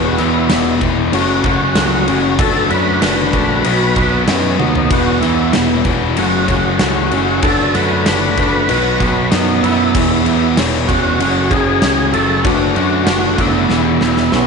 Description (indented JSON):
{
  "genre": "classic rock",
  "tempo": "95 BPM",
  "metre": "4/4",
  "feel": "straight",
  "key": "E major",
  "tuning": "A4 = 436 Hz",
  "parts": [
    { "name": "overdriven tonewheel organ", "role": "melody", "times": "0.0-14.5 s", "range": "C#4 to B4", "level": "-19 LUFS", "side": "right 1 dB", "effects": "chorus vibrato, slow rotary speaker, slapback echo" },
    { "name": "lead guitar through a small cranked amp", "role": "second line", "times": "0.0-14.5 s", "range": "F#3 to F#4", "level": "-21 LUFS", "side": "right 12 dB", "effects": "overdrive" },
    { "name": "warm upright piano", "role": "accompaniment", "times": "0.0-14.5 s", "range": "A3 to C#5", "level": "-25 LUFS", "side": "left 10 dB", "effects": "none" },
    { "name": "distorted electric guitar", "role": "riff", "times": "0.0-14.5 s", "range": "E2 to D4", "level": "-18 LUFS", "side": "left 12 dB", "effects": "distortion" },
    { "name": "fuzz guitar", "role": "riff", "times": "0.0-14.5 s", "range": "E2 to D4", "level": "-22 LUFS", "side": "right 1 dB", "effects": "distortion" },
    { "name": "growling picked electric bass", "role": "bass", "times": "0.0-14.5 s", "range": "E1 to F#2", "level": "-20 LUFS", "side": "right 1 dB", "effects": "overdrive" },
    { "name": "huge arena drum kit", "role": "drums", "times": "0.2-14.5 s", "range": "crash cymbal, kick drum, snare drum, toms", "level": "-18 LUFS", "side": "right 1 dB", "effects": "none" }
  ],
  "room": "moderate echo chamber reverb, RT60 2.0 s, studio reverb",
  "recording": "1960s-style stereo with parts hard left and right, nothing above 10.6 kHz",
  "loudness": "-12 LUFS",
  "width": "side -5 dB against mid",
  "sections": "0.0-14.5 A section",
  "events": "drum fill 4.6-4.9, 13.7-14.5",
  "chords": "0.0 E; 1.1 F#m; 2.4 D6/F#; 3.6 B; 4.9 E; 6.2 F#m; 7.4 D6/F#; 8.7 B; 9.9 E; 11.2 F#m; 12.4 D6/F#; 13.7 E"
}